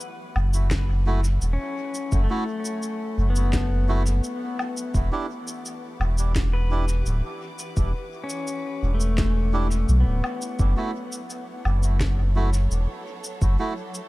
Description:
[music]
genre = ambient dub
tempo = 85 BPM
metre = 4/4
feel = straight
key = unclear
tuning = A4 = 441 Hz
[part]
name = rich studio string section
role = sustained chords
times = 0.0-14.1 s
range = E3 to D6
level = -42 LUFS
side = equal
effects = none
[part]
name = pedal steel guitar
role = arpeggios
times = 0.0-11.7 s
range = A3 to B4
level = -32 LUFS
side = left 3 dB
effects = dub echo
[part]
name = electronic shaker, woodblock and snare drum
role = drums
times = 0.0-14.1 s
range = none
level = -34 LUFS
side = equal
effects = dub echo
[part]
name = warm sub bass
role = bass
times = 0.4-13.6 s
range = D1 to B1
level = -21 LUFS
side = equal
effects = tube saturation
[part]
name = electronic kick drum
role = drums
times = 0.7-13.6 s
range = none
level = -25 LUFS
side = equal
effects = overdrive
[part]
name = melodica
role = stabs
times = 1.1-13.7 s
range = A3 to G4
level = -33 LUFS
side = right 3 dB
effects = dub echo
[sound]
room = little or no reverb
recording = none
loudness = -22 LUFS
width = side -20 dB against mid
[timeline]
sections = 0.0-14.1 A section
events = fade-in on string section 0.0-14.1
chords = 0.0 F#m7; 4.9 Em7; 10.6 F#m7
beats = 0.01 0.71 1.42 | 2.12 2.83 3.53 4.24 | 4.95 5.65 6.36 7.06 | 7.77 8.47 9.18 9.89 | 10.59 11.30 12.01 12.71 | 13.42

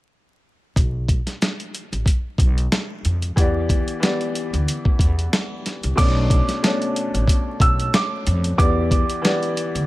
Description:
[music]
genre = hip hop, boom-bap hip-hop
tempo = 92 BPM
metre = 4/4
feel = swing 54% on 16ths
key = B minor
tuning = A4 = 440 Hz
[part]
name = upright bass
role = bass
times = 0.8-9.9 s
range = A1 to E#2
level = -21 LUFS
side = equal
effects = none
[part]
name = dusty soul sampler-style drum kit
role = drums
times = 0.8-9.9 s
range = crash cymbal, hi-hat, kick drum, snare drum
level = -20 LUFS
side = equal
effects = none
[part]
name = warm grand piano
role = accompaniment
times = 3.4-9.9 s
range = B2 to D5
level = -24 LUFS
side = left 2 dB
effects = cassette tape, high-pass filter, low-pass filter
[part]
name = dark upright piano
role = melody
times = 6.0-9.9 s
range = D6 to E6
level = -26 LUFS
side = right 3 dB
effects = high-pass filter, low-pass filter, digital delay
[sound]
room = light reverb, small room ambience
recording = vinyl crackle, lossy compression artefacts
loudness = -18 LUFS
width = side -18 dB against mid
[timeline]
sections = 0.8-6.0 A section; 6.0-9.9 B section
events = none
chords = 0.8 N.C.; 3.4 Em7; 6.0 Bm9; 8.6 Em7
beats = | 0.76 1.41 2.07 2.72 | 3.37 4.02 4.67 5.33 | 5.98 6.63 7.28 7.94 | 8.59 9.24

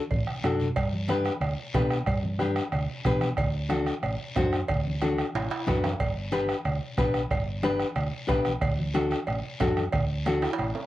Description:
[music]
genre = latin, cumbia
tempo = 183 BPM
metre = 4/4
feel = straight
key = G major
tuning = A4 = 440 Hz
[part]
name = hollow-body short-scale fingered electric bass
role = bass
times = 0.1-10.7 s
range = G1 to B2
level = -30 LUFS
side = equal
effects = none
[part]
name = bombo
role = percussion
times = 0.1-10.8 s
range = none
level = -31 LUFS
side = right 2 dB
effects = none
[part]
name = congas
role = percussion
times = 0.1-10.8 s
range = none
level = -36 LUFS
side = equal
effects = none
[part]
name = cowbell and timbales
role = percussion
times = 0.1-10.8 s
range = none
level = -35 LUFS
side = right 3 dB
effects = none
[part]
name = guiro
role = percussion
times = 0.1-10.9 s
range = none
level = -43 LUFS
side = left 3 dB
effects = none
[part]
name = nylon-string guitar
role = accompaniment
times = 0.4-10.5 s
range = D4 to C5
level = -27 LUFS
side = left 2 dB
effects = none
[sound]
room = moderate small room reverb, RT60 0.5 s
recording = worn, warbling old tape, cassette tape, warbly pitch drift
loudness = -25 LUFS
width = side -15 dB against mid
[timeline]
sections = 0.8-10.9 A section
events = drum fill 0.0-0.8, 5.3-6.0, 10.4-10.9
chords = 0.0 D; 0.8 G; 3.4 D; 6.0 G; 8.6 D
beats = 0.11 0.44 | 0.76 1.09 1.42 1.74 | 2.07 2.40 2.72 3.05 | 3.38 3.70 4.03 4.36 | 4.68 5.01 5.34 5.67 | 5.99 6.32 6.65 6.98 | 7.31 7.63 7.96 8.29 | 8.62 8.95 9.27 9.60 | 9.93 10.26 10.59

